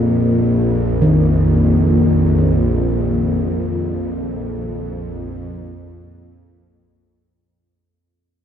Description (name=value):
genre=dark ambient drone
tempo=free time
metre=none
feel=none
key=unclear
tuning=A4 = 438 Hz
part: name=bowed-like drone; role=drone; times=0.0-7.6 s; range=Bb1 to F2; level=-16 LUFS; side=equal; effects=built-in reverb
part: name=gamelan-type bossed gongs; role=arpeggios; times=1.0-6.5 s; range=Eb3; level=-19 LUFS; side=equal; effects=ping-pong delay
room=wet plate reverb, RT60 2.3 s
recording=dreamy mix soaked in reverb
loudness=-14 LUFS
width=side -9 dB against mid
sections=0.0-7.5 A section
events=fade-out 2.5-7.5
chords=0.0 Bb5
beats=free time